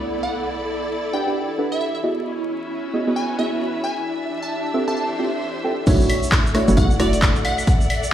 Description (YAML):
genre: UK garage, two-step garage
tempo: 133 BPM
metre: 4/4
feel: swing 60% on 16ths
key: B minor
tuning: A4 = 440 Hz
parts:
  - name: ethereal airy pad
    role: sustained chords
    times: 0.0-8.1 s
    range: E4 to E5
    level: -31 LUFS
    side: equal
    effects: ensemble chorus, built-in reverb, sidechain pumping
  - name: deep mellow chord stab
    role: stabs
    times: 0.0-7.7 s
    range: A3 to G5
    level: -23 LUFS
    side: right 1 dB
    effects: chorus, ping-pong delay
  - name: impact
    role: sound effects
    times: 0.0-0.5 s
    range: none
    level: -41 LUFS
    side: equal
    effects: none
  - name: rich studio string section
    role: texture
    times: 0.0-8.1 s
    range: B3 to F#5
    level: -28 LUFS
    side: equal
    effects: sidechain pumping
  - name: glassy wavetable pluck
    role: melody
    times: 0.2-7.7 s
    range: D5 to A5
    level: -28 LUFS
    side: equal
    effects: chorus, ping-pong delay
  - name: hollow knocking FM bass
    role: bass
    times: 5.9-7.4 s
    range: F#1 to B1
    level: -20 LUFS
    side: equal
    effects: none
  - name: electronic kick drum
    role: drums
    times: 5.9-7.8 s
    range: none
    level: -18 LUFS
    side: equal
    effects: none
  - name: house drum kit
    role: drums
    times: 5.9-8.0 s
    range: claves, crash cymbal, handclaps, hi-hat, rim click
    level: -23 LUFS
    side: left 1 dB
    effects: none
  - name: egg shaker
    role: percussion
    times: 5.9-8.1 s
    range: none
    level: -34 LUFS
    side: right 1 dB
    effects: none
room: light reverb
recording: played on a big sound system in a bare room, large studio reverb, vinyl crackle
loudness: -18 LUFS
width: side -11 dB against mid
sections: 0.0-5.9 A section; 5.9-8.1 B section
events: impact 0.0-0.5; filter sweep on synth stab 0.0-5.9; filter sweep on ambient pad 0.0-5.9; drop 5.9-8.1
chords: 0.5 Em11; 2.3 C#m11; 4.1 Dm11; 5.9 Bm11